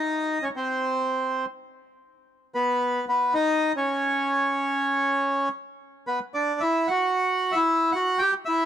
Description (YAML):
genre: tango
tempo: 112 BPM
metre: 4/4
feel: rubato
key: B major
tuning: A4 = 439 Hz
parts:
  - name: bandoneon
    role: solo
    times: 0.0-8.7 s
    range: B3 to G5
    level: -22 LUFS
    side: equal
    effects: none
room: studio ambience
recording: dry, close 1970s-style studio recording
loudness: -22 LUFS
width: side -10 dB against mid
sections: 0.0-6.1 A section; 6.1-8.7 B section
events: none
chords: 0.0 Cm; 1.8 Badd9; 3.9 N.C.; 6.1 Bm